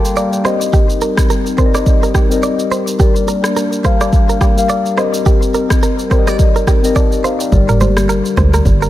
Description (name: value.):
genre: afrobeats.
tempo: 106 BPM.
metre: 4/4.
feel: swing 58% on 16ths.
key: G minor.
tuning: A4 = 436 Hz.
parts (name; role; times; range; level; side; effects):
mellow tine electric piano; accompaniment; 0.0-8.9 s; G3 to D6; -17 LUFS; left 5 dB; phaser.
hollow soft pad; sustained chords; 0.0-8.9 s; D3 to Bb4; -21 LUFS; equal; chorus.
afro-pop drum kit; drums; 0.1-8.9 s; kick drum, rim click, shaker, toms; -14 LUFS; equal; none.
direct-recorded clean electric guitar; riff; 0.2-8.9 s; G4 to D5; -20 LUFS; right 5 dB; ping-pong delay.
deep log drum bass; bass; 7.5-8.9 s; G1 to D2; -14 LUFS; equal; none.
congas; percussion; 7.8-8.5 s; none; -22 LUFS; right 2 dB; none.
room: digital ambience.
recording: none.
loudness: -11 LUFS.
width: side -14 dB against mid.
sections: 0.0-7.5 A section; 7.5-8.9 B section.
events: none.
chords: 0.4 Cm7; 3.0 Gm; 5.0 Cm7; 7.5 Gm.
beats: 0.17 | 0.73 1.30 1.86 2.43 | 3.00 3.56 4.13 4.69 | 5.26 5.83 6.39 6.96 | 7.52 8.09 8.66.